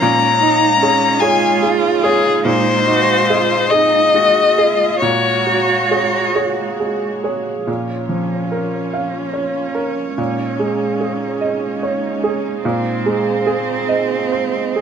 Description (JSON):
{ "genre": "neoclassical piano and strings", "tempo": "45-50 BPM (dotted quarters)", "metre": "6/8", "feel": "rubato", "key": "Bb minor", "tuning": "A4 = 440 Hz", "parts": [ { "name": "warm violin", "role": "melody", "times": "0.0-6.3 s", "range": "Ab4 to Bb5", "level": "-14 LUFS", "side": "left 5 dB", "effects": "plate reverb" }, { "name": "rich cello", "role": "second line", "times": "0.0-14.8 s", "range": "C4 to Gb4", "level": "-21 LUFS", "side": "right 6 dB", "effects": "none" }, { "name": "bright upright piano", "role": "accompaniment", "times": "0.0-14.8 s", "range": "Bb2 to F5", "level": "-19 LUFS", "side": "right 2 dB", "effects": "none" }, { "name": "rich studio string section", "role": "sustained chords", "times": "0.0-14.8 s", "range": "F3 to Eb5", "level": "-26 LUFS", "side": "equal", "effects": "none" } ], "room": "light reverb", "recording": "none", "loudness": "-14 LUFS", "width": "side -7 dB against mid", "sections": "0.0-7.7 A section; 7.7-14.8 B section", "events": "none", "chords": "0.0 Dbsus2/Bb; 2.5 Ab/Bb; 5.0 Gbsus2/Bb; 7.7 Bbm; 10.2 Dbsus2/Bb; 12.6 Ab/Bb" }